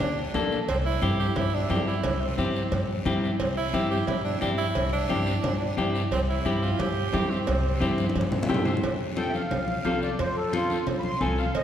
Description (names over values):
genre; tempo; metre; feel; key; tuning
latin, cumbia; 177 BPM; 4/4; straight; F major; A4 = 440 Hz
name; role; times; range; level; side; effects
clear tenor saxophone; second line; 0.0-8.5 s; C4 to G4; -31 LUFS; right 4 dB; none
upright bass; bass; 0.0-11.6 s; C2 to G2; -29 LUFS; equal; none
congas; percussion; 0.0-11.6 s; none; -32 LUFS; left 2 dB; none
cowbell and timbales; percussion; 0.0-11.6 s; none; -33 LUFS; right 2 dB; none
guiro; percussion; 0.0-11.6 s; none; -42 LUFS; left 4 dB; none
clean electric guitar; accompaniment; 0.3-11.5 s; Bb3 to G5; -29 LUFS; left 2 dB; none
accordion; melody; 9.2-11.6 s; F4 to C6; -29 LUFS; right 1 dB; light tremolo tuning
room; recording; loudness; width
wet concert hall reverb, RT60 2.3 s; recorded in a church or concert hall; -24 LUFS; side -10 dB against mid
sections
0.0-8.8 A section; 8.8-11.6 B section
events
tenor saxophone solo 0.0-8.8; drum fill 8.0-8.8; clean electric guitar fill 8.3-8.8; accordion solo 8.8-11.6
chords
0.0 Gmadd9 (rootless); 0.7 C; 8.8 F